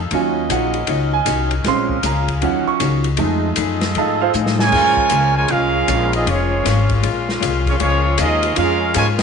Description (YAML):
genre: jazz, big band swing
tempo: 156 BPM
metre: 4/4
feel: swing 65% on 8ths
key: Bb minor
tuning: A4 = 440 Hz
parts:
  - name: warm saxophone section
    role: sustained chords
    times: 0.0-9.2 s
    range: Gb3 to F5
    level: -26 LUFS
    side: left 2 dB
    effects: none
  - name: upright bass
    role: bass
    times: 0.0-9.2 s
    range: F1 to A2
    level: -20 LUFS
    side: left 2 dB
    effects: none
  - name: clear concert grand piano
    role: accompaniment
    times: 0.1-4.3 s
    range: Gb3 to Db6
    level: -20 LUFS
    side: right 10 dB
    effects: none
  - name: vintage hollow-body jazz guitar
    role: accompaniment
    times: 0.1-9.2 s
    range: Bb2 to G#4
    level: -25 LUFS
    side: left 13 dB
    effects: none
  - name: open jazz drum kit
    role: drums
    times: 0.1-9.2 s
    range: crash cymbal, hi-hat, kick drum, ride cymbal, snare drum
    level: -24 LUFS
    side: left 3 dB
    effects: none
  - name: clear trumpet section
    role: melody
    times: 4.6-9.2 s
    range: Bb3 to G#5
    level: -18 LUFS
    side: right 2 dB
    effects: none
  - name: warm trombone section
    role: second line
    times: 4.6-9.2 s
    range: Db3 to F4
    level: -23 LUFS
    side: right 9 dB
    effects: none
room: moderate echo chamber reverb, RT60 1.6 s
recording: 1960s-style stereo with parts hard left and right, nothing above 10.4 kHz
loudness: -15 LUFS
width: side -6 dB against mid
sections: 0.0-4.7 A section; 4.7-9.2 B section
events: grand piano solo 0.0-4.7; drum fill 4.3-4.7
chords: 0.1 Ebm7; 1.7 Bbm7; 2.4 Ebm7; 3.2 F7#9; 4.7 Bbm7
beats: | 0.11 0.50 0.88 1.27 | 1.65 2.04 2.42 2.81 | 3.19 3.58 3.96 4.34 | 4.73 5.11 5.50 5.88 | 6.26 6.65 7.03 7.41 | 7.80 8.18 8.56 8.95